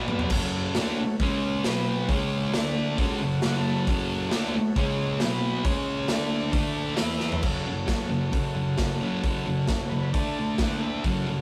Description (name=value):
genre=garage rock duo or trio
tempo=134 BPM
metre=4/4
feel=straight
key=F# minor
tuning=A4 = 440 Hz
part: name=combo organ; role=sustained chords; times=0.0-11.4 s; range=B3 to B5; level=-36 LUFS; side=equal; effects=none
part: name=thick fuzz guitar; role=riff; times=0.0-11.4 s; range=F#2 to E4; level=-29 LUFS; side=equal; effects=distortion
part: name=raw garage drum kit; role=drums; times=0.1-11.1 s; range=crash cymbal, hi-hat, kick drum, snare drum, toms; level=-30 LUFS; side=equal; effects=none
room=moderate studio reverb, RT60 0.6 s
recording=rough rehearsal-room recording, warm saturation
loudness=-26 LUFS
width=mono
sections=0.3-7.4 A section; 7.4-11.4 B section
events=drum fill 0.0-0.3, 7.2; transistor combo organ fill 3.2-3.9, 9.7-11.0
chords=0.3 F#m; 1.2 C#5; 1.6 B5; 2.1 C#5; 2.5 D5; 3.0 F#m; 4.8 C#5; 5.2 B5; 5.6 C#5; 6.1 D5; 7.0 E5; 7.4 F#m; 10.1 D5